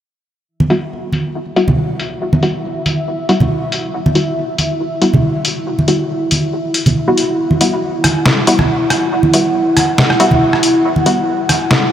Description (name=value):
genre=deep dubstep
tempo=139 BPM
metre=4/4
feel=swing 55% on 16ths, half-time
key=E minor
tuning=A4 = 438 Hz
part: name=deep dark ambient pad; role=sustained chords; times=1.9-11.9 s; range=E4 to F#5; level=-18 LUFS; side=right 1 dB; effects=chorus, built-in reverb
part: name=congas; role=percussion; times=0.6-11.6 s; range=none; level=-17 LUFS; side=right 1 dB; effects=none
part: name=filtered dub chord stab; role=stabs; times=0.7-11.2 s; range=G3 to F#4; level=-18 LUFS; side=left 1 dB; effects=lush chorus, dub echo
part: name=trip hop sampler-style drum kit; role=drums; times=0.7-11.8 s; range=hi-hat, rim click, snare drum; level=-16 LUFS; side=left 1 dB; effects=low-pass filter on hats, low-pass filter on snare, low-pass filter on room
room=wet huge ambient reverb, RT60 4.5 s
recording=dreamy mix soaked in reverb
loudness=-12 LUFS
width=side -10 dB against mid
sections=0.5-11.9 A section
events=filter sweep on drum 0.5-11.9; filter sweep on synth stab 0.5-11.9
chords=0.5 Emadd9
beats=| 0.49 0.92 1.35 1.78 | 2.21 2.64 3.08 3.51 | 3.94 4.37 4.80 5.23 | 5.67 6.10 6.53 6.96 | 7.39 7.82 8.26 8.69 | 9.12 9.55 9.98 10.41 | 10.85 11.28 11.71